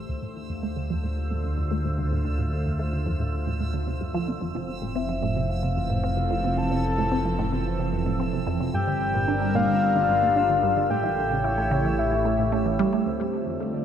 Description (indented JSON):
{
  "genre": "ambient, sequencer-driven space music",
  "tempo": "111 BPM",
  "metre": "4/4",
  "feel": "straight",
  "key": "unclear",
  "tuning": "A4 = 443 Hz",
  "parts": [
    { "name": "phased analog pad", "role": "sustained chords", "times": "0.0-13.8 s", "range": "D3 to D5", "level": "-30 LUFS", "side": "right 1 dB", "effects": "phaser, chorus" },
    { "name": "resonant blip pluck", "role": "riff", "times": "0.0-13.8 s", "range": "D2 to E4", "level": "-28 LUFS", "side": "right 2 dB", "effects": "phaser, tape echo" },
    { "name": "fat analog bass", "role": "bass", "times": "0.0-13.8 s", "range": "F1 to D2", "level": "-28 LUFS", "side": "equal", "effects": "none" },
    { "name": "bubbling stepped-filter texture", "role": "texture", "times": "0.0-13.1 s", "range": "E6", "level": "-41 LUFS", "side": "right 3 dB", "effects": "chorus, built-in reverb" },
    { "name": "soft octave-layered synth lead", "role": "melody", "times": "5.0-13.8 s", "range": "C5 to A5", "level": "-26 LUFS", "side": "left 3 dB", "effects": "chorus, tape echo" }
  ],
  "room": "wet cathedral reverb, RT60 5.3 s",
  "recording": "in a vast, echoing space",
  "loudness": "-22 LUFS",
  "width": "side -9 dB against mid",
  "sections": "0.0-13.1 A section",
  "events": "fade-in on analog synth pad 0.0-13.1; fade-in on synth texture 0.0-13.1; filter sweep on synth arpeggio sound 0.0-13.1",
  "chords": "0.1 Dm7; 4.4 Fmaj7; 8.7 Gm7; 10.9 A7; 13.1 Dm"
}